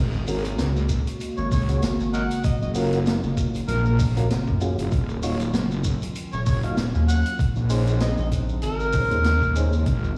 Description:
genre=glitch hop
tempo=97 BPM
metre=4/4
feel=swing 56% on 16ths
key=unclear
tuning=A4 = 437 Hz
part: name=warbly tape-like pad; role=sustained chords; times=0.5-10.2 s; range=Db3 to Gb4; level=-34 LUFS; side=equal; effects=chorus, built-in reverb, sidechain pumping
part: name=wobble bass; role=bass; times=0.0-10.2 s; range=Eb1 to Eb2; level=-25 LUFS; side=equal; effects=chorus, tube saturation
part: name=swinging big-band drum kit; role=drums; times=0.1-10.1 s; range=hi-hat, rim click, snare drum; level=-34 LUFS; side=equal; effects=none
part: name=shekere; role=percussion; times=0.1-10.1 s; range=none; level=-43 LUFS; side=equal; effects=none
part: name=percussive tonewheel organ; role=stabs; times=0.3-9.7 s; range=Db4 to F5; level=-34 LUFS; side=equal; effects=chorus vibrato, slow rotary speaker, sidechain pumping, tape echo
part: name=electronic kick drum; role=drums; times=0.9-10.0 s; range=none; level=-27 LUFS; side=equal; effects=none
part: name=overdriven harmonica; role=melody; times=1.4-9.5 s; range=Bb4 to Gb5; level=-32 LUFS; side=equal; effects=tape echo
part: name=rubbery square bass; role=bass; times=1.4-9.1 s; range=Eb1 to Gb2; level=-27 LUFS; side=equal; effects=none
room=light reverb, small room ambience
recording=played on a big sound system in a bare room, stone room reverb, studio reverb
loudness=-23 LUFS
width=mono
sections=0.0-10.2 A section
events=none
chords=0.0 Ab9sus4; 2.4 Gbmaj7; 4.9 Ebm9; 7.4 Bbm11

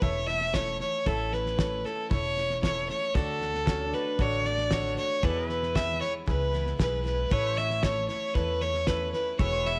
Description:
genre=honky-tonk and classic country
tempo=115 BPM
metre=4/4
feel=straight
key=A major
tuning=A4 = 440 Hz
part: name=clear fiddle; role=melody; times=0.0-9.8 s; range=A4 to E5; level=-31 LUFS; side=equal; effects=none
part: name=clear upright piano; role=accompaniment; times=0.0-9.8 s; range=E4 to E5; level=-42 LUFS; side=equal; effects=none
part: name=picked steel-string acoustic guitar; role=accompaniment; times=0.0-9.8 s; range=E2 to F#4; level=-42 LUFS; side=equal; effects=none
part: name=pedal steel guitar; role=sustained chords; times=0.0-9.8 s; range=D4 to E5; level=-43 LUFS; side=equal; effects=subtle chorus
part: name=upright bass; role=bass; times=0.0-9.8 s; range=E1 to E2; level=-35 LUFS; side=equal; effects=none
part: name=cloth-damped thuddy drum kit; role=drums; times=0.0-9.7 s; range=hi-hat, kick drum, snare drum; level=-33 LUFS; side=equal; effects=none
room=light reverb, studio reverb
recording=none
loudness=-28 LUFS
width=mono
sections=0.0-9.8 A section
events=none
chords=0.0 A; 3.1 D; 5.2 E; 7.3 A

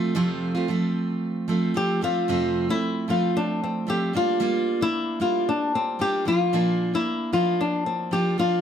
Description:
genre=pop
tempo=113 BPM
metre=4/4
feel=straight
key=F major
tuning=A4 = 442 Hz
part: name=picked steel-string acoustic guitar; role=accompaniment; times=0.0-8.6 s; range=F2 to F4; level=-25 LUFS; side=right 2 dB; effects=none
part: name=flamenco guitar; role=melody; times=1.8-8.6 s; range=C4 to G4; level=-23 LUFS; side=left 2 dB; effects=none
room=moderate studio reverb, RT60 0.7 s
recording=none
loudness=-22 LUFS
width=side -8 dB against mid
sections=0.0-2.3 A section; 2.3-8.6 B section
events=none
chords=0.0 F; 4.1 Gm7; 6.3 Bb

